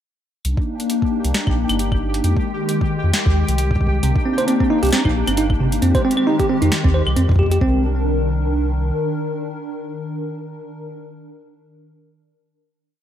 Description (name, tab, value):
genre	IDM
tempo	134 BPM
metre	4/4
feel	swing 56% on 16ths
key	C minor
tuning	A4 = 440 Hz
part	hollow soft pad	sustained chords	0.4-10.9 s	Eb3 to Bb4	-23 LUFS	left 2 dB	ensemble chorus
part	round analog bass	bass	0.4-8.9 s	G1 to F2	-19 LUFS	equal	none
part	booming analog drum machine	drums	0.4-7.6 s	claves, hi-hat, snare drum	-24 LUFS	left 1 dB	digital delay
part	pulsing gated texture	texture	0.8-7.6 s	G4 to G5	-31 LUFS	equal	chorus, built-in reverb
part	electronic kick drum	drums	0.6-7.7 s	none	-21 LUFS	equal	overdrive
part	bell-like tine electric piano	arpeggios	4.0-7.8 s	C3 to C5	-19 LUFS	right 2 dB	vintage 12-bit sampler grit, digital delay
room	light reverb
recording	rough home demo mix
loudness	-16 LUFS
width	side -10 dB against mid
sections	0.4-7.6 groove; 7.6-11.2 final chord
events	none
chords	0.4 Cm9 (rootless); 2.2 Fm9 (rootless); 4.0 Cm9; 5.8 Fm9; 7.6 Cm9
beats	| 0.45 0.90 1.34 1.79 | 2.24 2.69 3.13 3.58 | 4.03 4.48 4.93 5.37 | 5.82 6.27 6.72 7.17 | 7.61 8.06 8.51 8.96 | 9.40 9.85 10.30 10.75